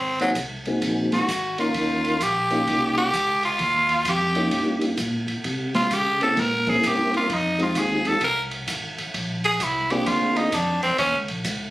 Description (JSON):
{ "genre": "soul jazz organ trio", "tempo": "130 BPM", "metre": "4/4", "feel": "swing 65% on 8ths", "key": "Eb mixolydian", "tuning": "A4 = 440 Hz", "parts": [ { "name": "growling tenor saxophone", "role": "melody", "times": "0.0-11.2 s", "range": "Gb3 to Bb4", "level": "-21 LUFS", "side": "equal", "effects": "none" }, { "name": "tonewheel organ", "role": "bass", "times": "0.0-11.7 s", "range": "Ab1 to Db3", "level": "-30 LUFS", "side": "equal", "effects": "slow rotary speaker" }, { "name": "percussive tonewheel organ", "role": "melody", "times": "0.2-10.5 s", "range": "Ab3 to Bb4", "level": "-24 LUFS", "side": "equal", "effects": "slow rotary speaker, chorus vibrato" }, { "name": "open jazz drum kit", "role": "drums", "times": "0.2-11.6 s", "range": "hi-hat, kick drum, ride cymbal, snare drum", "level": "-29 LUFS", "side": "right 1 dB", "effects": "none" } ], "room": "light reverb", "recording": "recorded on a phone in the room, studio ambience, compression", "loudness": "-20 LUFS", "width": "side -17 dB against mid", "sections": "0.0-11.7 A section", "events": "tenor saxophone solo 0.0-11.7", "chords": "0.0 Ab9; 1.8 Eb9; 5.5 C7b9; 7.3 Fm7; 9.2 Bb9; 11.0 Eb5" }